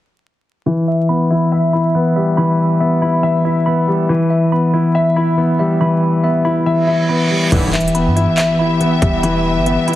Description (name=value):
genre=hip hop, trap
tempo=140 BPM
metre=4/4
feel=half-time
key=E minor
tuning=A4 = 440 Hz
part: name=dark concert grand piano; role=accompaniment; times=0.7-10.0 s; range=E3 to E5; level=-18 LUFS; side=left 2 dB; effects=low-pass filter
part: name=mellow tine electric piano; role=arpeggios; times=0.7-10.0 s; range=E3 to B5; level=-15 LUFS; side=equal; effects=medium stereo tremolo, low-pass filter, ping-pong delay
part: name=reverse cymbal and impact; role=sound effects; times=6.8-9.2 s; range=none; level=-24 LUFS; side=right 2 dB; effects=none
part: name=dark symphonic string section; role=sustained chords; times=7.5-10.0 s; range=E3 to E5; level=-21 LUFS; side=left 2 dB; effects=none
part: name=polysynth with added fifth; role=stabs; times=7.5-7.7 s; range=B1 to E3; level=-23 LUFS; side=right 2 dB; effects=chorus
part: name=warm 808-style bass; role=bass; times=7.5-9.8 s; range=E1 to G2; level=-20 LUFS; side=equal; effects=none
part: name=trap drum kit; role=drums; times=7.5-10.0 s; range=crash cymbal, handclaps, hi-hat, kick drum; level=-20 LUFS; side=equal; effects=none
room=light reverb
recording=heavily compressed radio sound, vinyl crackle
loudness=-13 LUFS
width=side -14 dB against mid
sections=0.7-7.5 A section; 7.5-10.0 B section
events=filter sweep 0.7-7.5; reverse cymbal 6.8-7.5; impact 7.5-9.2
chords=0.7 Em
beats=| 0.66 1.09 1.52 1.95 | 2.38 2.81 3.23 3.66 | 4.09 4.52 4.95 5.38 | 5.80 6.23 6.66 7.09 | 7.52 7.95 8.38 8.80 | 9.23 9.66